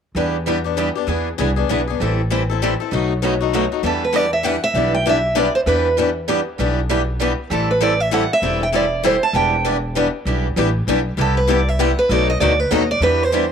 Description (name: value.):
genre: acoustic string swing (jazz manouche).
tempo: 196 BPM.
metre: 3/4.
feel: swing 60% on 8ths.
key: E minor.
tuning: A4 = 440 Hz.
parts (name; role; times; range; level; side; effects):
upright bass; bass; 0.1-13.5 s; E1 to E2; -22 LUFS; equal; none.
picked old ladder-braced acoustic guitar; accompaniment; 0.2-13.4 s; B2 to B4; -24 LUFS; right 12 dB; none.
picked swing-style acoustic guitar; accompaniment; 0.2-13.4 s; B2 to A4; -21 LUFS; left 11 dB; none.
picked steel-string acoustic guitar; melody; 3.9-13.5 s; A4 to A5; -18 LUFS; right 2 dB; none.
room: light reverb, small room ambience.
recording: 1960s-style stereo with parts hard left and right.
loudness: -16 LUFS.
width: side -7 dB against mid.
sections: 0.2-3.8 A section; 3.8-13.5 B section.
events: none.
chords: 0.2 Em7; 1.1 E7; 2.0 Am7; 2.9 B7; 3.8 Em7; 7.5 Am7; 9.3 Em7; 11.2 Cmaj7; 12.1 B7#9.